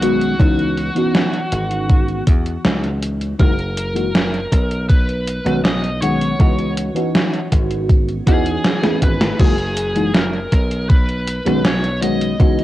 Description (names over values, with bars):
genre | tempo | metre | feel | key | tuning
vaporwave | 80 BPM | 4/4 | straight | C# dorian | A4 = 440 Hz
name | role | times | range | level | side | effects
biting lead guitar | melody | 0.0-12.6 s | F#4 to D#5 | -25 LUFS | equal | overdrive, cassette tape, tape echo
mellow FM electric piano | accompaniment | 0.0-12.6 s | D#3 to G#4 | -20 LUFS | left 1 dB | phaser, wide subtle chorus
dry thumbed slap bass | bass | 0.0-12.6 s | F#1 to E2 | -22 LUFS | equal | none
gated 80s digital drum machine | drums | 0.0-12.6 s | crash cymbal, hi-hat, snare drum | -19 LUFS | equal | gated reverb, gated reverb snare
electronic kick drum | drums | 0.4-12.5 s | none | -14 LUFS | equal | none
room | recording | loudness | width
light reverb, digital ambience | home recording on cassette | -15 LUFS | side -15 dB against mid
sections
0.0-9.4 A section; 9.4-12.6 B section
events
drum fill 8.8-9.4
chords
0.4 C#m11; 3.4 F#13; 4.9 B69; 6.4 C#m11; 9.4 F#13; 10.9 B69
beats
| 0.40 1.15 1.90 2.65 | 3.40 4.15 4.90 5.65 | 6.40 7.15 7.90 8.65 | 9.40 10.15 10.90 11.65 | 12.40